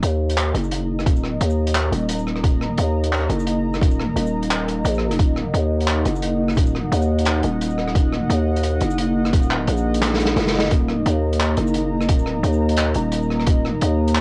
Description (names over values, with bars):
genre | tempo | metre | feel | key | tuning
half-time drum and bass | 174 BPM | 4/4 | swing 54% on 16ths, half-time | Eb minor | A4 = 435 Hz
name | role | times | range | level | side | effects
dark analog pad | sustained chords | 0.0-14.2 s | Bb3 to Bb5 | -26 LUFS | equal | chorus, sidechain pumping, cassette tape
growling 808-style bass | bass | 0.0-14.2 s | Eb1 to Eb2 | -23 LUFS | equal | none
crunchy breakbeat drum kit | drums | 0.0-14.2 s | handclaps, hi-hat, rim click, shaker, snare drum | -28 LUFS | equal | cassette tape
electronic kick drum | drums | 1.1-13.5 s | none | -20 LUFS | equal | cassette tape
room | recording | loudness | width
light reverb | home recording on cassette | -20 LUFS | mono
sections
0.0-14.2 A section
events
drum fill 10.0-10.7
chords
0.0 Eb5